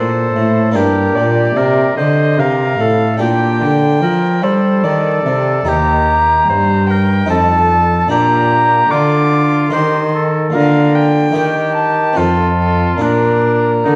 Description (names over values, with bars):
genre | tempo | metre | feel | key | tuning
classical, baroque-style sonata movement with continuo | 74 BPM | 3/4 | straight | G minor, Bb major from 5.7 s | A4 = 441 Hz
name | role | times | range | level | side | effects
warm violin | melody | 0.0-14.0 s | A4 to D6 | -18 LUFS | equal | none
bright oboe | second line | 0.0-14.0 s | D4 to C5 | -23 LUFS | equal | none
harpsichord | accompaniment | 0.0-14.0 s | Eb2 to D5 | -20 LUFS | equal | none
rich cello | bass | 0.0-14.0 s | Eb2 to G3 | -18 LUFS | equal | none
room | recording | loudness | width
wet recital hall reverb, RT60 1.6 s | worn, warbling old tape, cassette tape, vinyl crackle, warbly pitch drift | -13 LUFS | mono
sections
0.0-14.0 A section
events
none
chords
0.0 D7(no3); 0.7 Gm; 3.2 Gm/Bb; 5.7 Eb; 7.3 F7; 8.1 Bb; 9.7 Cm/Eb; 10.5 Bb/D; 11.4 Eb; 12.2 F; 13.0 Bb